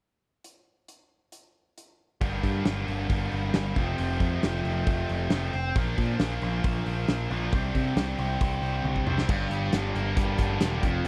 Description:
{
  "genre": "classic rock",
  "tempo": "136 BPM",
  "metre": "4/4",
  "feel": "straight",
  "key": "G minor",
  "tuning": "A4 = 440 Hz",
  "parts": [
    { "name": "big rock drum kit", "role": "drums", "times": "0.4-11.1 s", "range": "crash cymbal, hi-hat, kick drum, snare drum, toms", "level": "-32 LUFS", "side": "equal", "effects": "none" },
    { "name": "tight distorted guitar", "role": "riff", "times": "2.2-11.1 s", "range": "F2 to D4", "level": "-32 LUFS", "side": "equal", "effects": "distortion" },
    { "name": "growling picked electric bass", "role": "bass", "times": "2.2-11.1 s", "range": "E1 to C3", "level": "-32 LUFS", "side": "equal", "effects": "overdrive" },
    { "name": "overdriven electric guitar", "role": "riff", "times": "9.3-11.1 s", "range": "F2 to D4", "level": "-36 LUFS", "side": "equal", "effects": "none" }
  ],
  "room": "little or no reverb",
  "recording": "dry, close 1970s-style studio recording",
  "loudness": "-27 LUFS",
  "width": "mono",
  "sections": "0.4-2.2 A section; 2.2-9.3 B section; 9.3-11.1 C section",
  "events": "drum fill 8.9-9.3",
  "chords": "0.4 N.C.; 2.2 Gm; 3.8 F; 5.8 Bb; 7.5 Csus2; 9.3 Gm",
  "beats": "| 0.45 0.89 1.33 1.77 | 2.21 2.66 3.10 3.54 | 3.99 4.43 4.87 5.31 | 5.76 6.20 6.64 7.08 | 7.53 7.97 8.41 8.85 | 9.29 9.73 10.18 10.62 | 11.06"
}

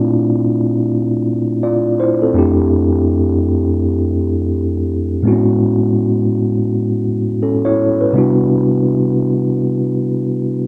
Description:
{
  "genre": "R&B",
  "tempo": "free time",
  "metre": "none",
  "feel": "none",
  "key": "unclear",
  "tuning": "A4 = 440 Hz",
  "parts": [
    { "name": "mellow tine electric piano", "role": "solo", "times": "0.0-10.7 s", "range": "F2 to D5", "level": "-16 LUFS", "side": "equal", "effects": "none" }
  ],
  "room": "little or no reverb",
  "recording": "dry, close 1970s-style studio recording",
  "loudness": "-16 LUFS",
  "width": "mono",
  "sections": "0.0-10.7 A section",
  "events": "none",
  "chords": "0.0 Bbmaj9; 2.4 Fmaj9; 5.2 Amaj9; 8.1 Cmaj9",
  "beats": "free time"
}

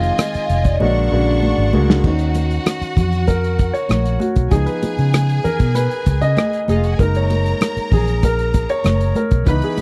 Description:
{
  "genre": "lush 1970s-style soul",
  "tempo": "97 BPM",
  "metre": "4/4",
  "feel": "straight",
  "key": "Eb minor",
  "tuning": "A4 = 439 Hz",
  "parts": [
    { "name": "vibraphone with soft mallets", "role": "melody", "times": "0.0-1.7 s", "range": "Db5 to F5", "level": "-23 LUFS", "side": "equal", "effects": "none" },
    { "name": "clear studio violin section", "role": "second line", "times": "0.0-9.8 s", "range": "D4 to C#6", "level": "-30 LUFS", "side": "equal", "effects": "none" },
    { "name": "warm grand piano", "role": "accompaniment", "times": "0.0-9.8 s", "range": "C#3 to Eb5", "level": "-23 LUFS", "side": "equal", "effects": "none" },
    { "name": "vintage muted fingered electric bass", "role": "bass", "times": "0.0-9.8 s", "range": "F1 to Db3", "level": "-20 LUFS", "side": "equal", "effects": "none" },
    { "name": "warm soul drum kit", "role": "drums", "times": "0.0-9.8 s", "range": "crash cymbal, hi-hat, kick drum, rim click, snare drum", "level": "-20 LUFS", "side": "equal", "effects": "none" },
    { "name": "congas", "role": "percussion", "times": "0.2-9.8 s", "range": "none", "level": "-26 LUFS", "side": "equal", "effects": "none" }
  ],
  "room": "little or no reverb",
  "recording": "dry, close 1970s-style studio recording",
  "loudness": "-17 LUFS",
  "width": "mono",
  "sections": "0.0-2.0 A section; 2.0-9.8 B section",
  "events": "drum fill 0.8-2.0; grand piano solo 2.0-9.8",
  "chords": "0.0 Fm7; 0.8 Bb7alt; 2.0 Ebm9; 4.5 Db9; 7.0 Gb6",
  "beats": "0.19 0.81 1.43 | 2.04 2.66 3.28 3.90 | 4.52 5.14 5.75 6.37 | 6.99 7.61 8.23 8.85 | 9.47"
}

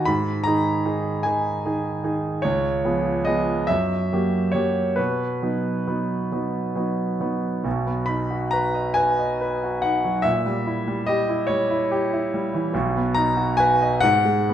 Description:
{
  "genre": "classical, romantic nocturne for solo piano",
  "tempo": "43-53 BPM (dotted quarters)",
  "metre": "12/8",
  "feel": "rubato",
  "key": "B major",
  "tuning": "A4 = 440 Hz",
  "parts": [
    { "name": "clear concert grand piano", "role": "solo", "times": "0.0-14.5 s", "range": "B1 to B5", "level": "-20 LUFS", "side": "equal", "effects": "none" }
  ],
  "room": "wet recital hall reverb, RT60 1.4 s",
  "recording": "none",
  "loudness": "-20 LUFS",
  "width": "side -10 dB against mid",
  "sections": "0.0-7.7 A section; 7.7-14.5 B section",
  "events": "none",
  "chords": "0.1 G#5; 2.4 C#7; 3.7 F#7b9; 5.0 B; 10.3 A#dim7; 12.7 B; 14.0 N.C.",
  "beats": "0.07 1.25 | 2.44 3.70 4.99 6.32 | 7.65 8.97 10.25 11.50 | 12.74 14.03"
}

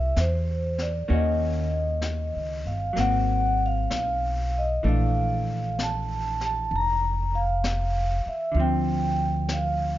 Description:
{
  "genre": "jazz ballad",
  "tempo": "64 BPM",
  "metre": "4/4",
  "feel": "swing 67% on 8ths",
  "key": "unclear",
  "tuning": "A4 = 440 Hz",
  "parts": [
    { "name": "vibraphone with soft mallets", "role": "melody", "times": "0.0-10.0 s", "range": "C5 to Bb5", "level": "-27 LUFS", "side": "equal", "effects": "none" },
    { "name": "vintage hollow-body jazz guitar", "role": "accompaniment", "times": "0.0-10.0 s", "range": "D3 to G4", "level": "-31 LUFS", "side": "equal", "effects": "none" },
    { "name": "upright bass", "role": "bass", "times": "0.0-10.0 s", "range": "F1 to E2", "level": "-26 LUFS", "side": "equal", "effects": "none" },
    { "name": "jazz brush drum kit", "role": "drums", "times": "0.2-10.0 s", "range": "brushed snare drum, hi-hat, snare drum", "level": "-37 LUFS", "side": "left 3 dB", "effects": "none" }
  ],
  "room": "little or no reverb",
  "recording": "nothing above 7.4 kHz",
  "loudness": "-23 LUFS",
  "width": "side -14 dB against mid",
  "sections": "0.0-10.0 A section",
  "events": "none",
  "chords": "0.0 Fmaj9 (rootless); 1.1 Ebm7; 2.9 Ab9; 4.8 Bbmaj7#11; 8.6 Dm7",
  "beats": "0.16 | 1.08 2.01 2.95 3.89 | 4.83 5.76 6.70 7.63 | 8.55 9.48"
}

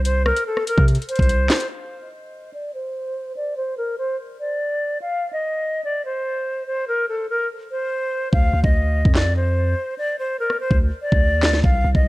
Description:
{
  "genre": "hip hop, drill",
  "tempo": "145 BPM",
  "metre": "4/4",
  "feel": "half-time",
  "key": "D phrygian",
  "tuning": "A4 = 441 Hz",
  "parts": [
    { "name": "long sustained 808-style bass", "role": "bass", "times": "0.0-1.5, 8.3-12.1 s", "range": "C2 to C3", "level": "-19 LUFS", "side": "equal", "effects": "none" },
    { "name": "hollow concert flute", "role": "melody", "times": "0.1-12.1 s", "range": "A4 to F5", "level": "-23 LUFS", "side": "equal", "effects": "low-pass filter, tape echo" },
    { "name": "drill drum kit", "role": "drums", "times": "0.1-1.7, 8.3-12.0 s", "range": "handclaps, hi-hat, kick drum, rim click, snare drum", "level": "-19 LUFS", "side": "equal", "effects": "vintage 12-bit sampler grit" }
  ],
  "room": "light reverb, digital ambience",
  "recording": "none",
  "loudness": "-19 LUFS",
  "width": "side -19 dB against mid",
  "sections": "0.0-1.7 A section; 1.7-8.3 B section; 8.3-12.1 C section",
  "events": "filter sweep on flute 1.7-8.3; hi-hats muted 8.3-12.1",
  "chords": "0.0 N.C.; 8.3 Dm",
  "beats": "| 0.05 0.47 0.88 1.29 | 1.71 2.12 2.53 2.95 | 3.36 3.78 4.19 4.60 | 5.02 5.43 5.84 6.26 | 6.67 7.09 7.50 7.91 | 8.33 8.74 9.15 9.57 | 9.98 10.40 10.81 11.22 | 11.64 12.05"
}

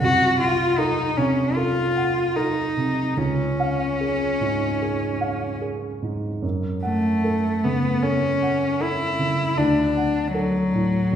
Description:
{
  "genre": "classical, romantic duo for cello and grand piano",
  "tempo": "75 BPM",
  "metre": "4/4",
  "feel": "uneven beats, rubato",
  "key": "F# minor",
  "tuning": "A4 = 440 Hz",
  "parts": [
    { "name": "rich cello", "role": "melody", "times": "0.0-11.2 s", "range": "F#3 to Gb4", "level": "-21 LUFS", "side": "left 1 dB", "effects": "none" },
    { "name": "warm grand piano", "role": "accompaniment", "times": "0.0-11.2 s", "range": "C2 to Gb5", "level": "-24 LUFS", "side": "right 2 dB", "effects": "none" }
  ],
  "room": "wet recital hall reverb, RT60 1.8 s",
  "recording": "heard from further back in the room",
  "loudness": "-20 LUFS",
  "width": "side -9 dB against mid",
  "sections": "0.0-11.2 A section",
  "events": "none",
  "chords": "0.0 Cdim7; 3.2 C#; 6.4 F#m; 9.6 D",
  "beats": "| 0.01 0.78 1.56 2.36 | 3.17 3.99 4.81 5.62 | 6.43 7.25 8.04 8.81 | 9.58 10.35 11.13"
}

